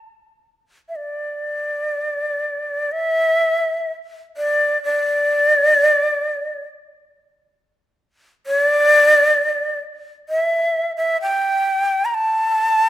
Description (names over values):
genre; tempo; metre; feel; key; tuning
japanese traditional, Japanese chamber music; 55-68 BPM; 4/4; rubato; unclear; A4 = 441 Hz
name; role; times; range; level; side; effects
breathy bright shakuhachi; solo; 0.9-12.9 s; D5 to Bb5; -16 LUFS; equal; none
room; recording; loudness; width
moderate recital hall reverb, RT60 1.6 s; none; -16 LUFS; side -13 dB against mid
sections
1.0-12.9 A section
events
none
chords
none